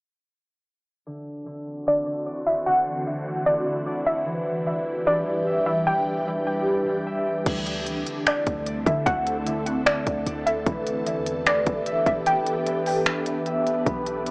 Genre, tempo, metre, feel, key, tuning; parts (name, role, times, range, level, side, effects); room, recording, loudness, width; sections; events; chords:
hip hop, atmospheric cloud-rap; 150 BPM; 4/4; half-time; A4 = 440 Hz
ethereal airy pad; sustained chords; 2.0-14.3 s; D2 to A4; -28 LUFS; equal; ensemble chorus, built-in reverb, phaser, sidechain pumping, low-pass filter
concert harp; arpeggios; 1.1-14.3 s; D3 to E5; -28 LUFS; equal; low-pass filter, digital delay
warbly dusty pluck; melody; 1.9-12.6 s; D5 to G5; -25 LUFS; equal; chorus, low-pass filter, digital delay
warm 808-style bass; bass; 7.5-14.3 s; E1 to D3; -33 LUFS; equal
trap drum kit; drums; 7.5-14.3 s; crash cymbal, finger snaps, hi-hat, kick drum; -25 LUFS; equal
light reverb, digital ambience; worn, warbling old tape, cassette tape, warbly pitch drift, small speaker sound; -22 LUFS; side -36 dB against mid
1.1-7.5 A section; 7.5-14.3 B section
filter sweep 1.1-7.5; kick muted 12.3-13.9
1.1 D7; 4.3 Em7; 7.5 D7; 10.7 Em7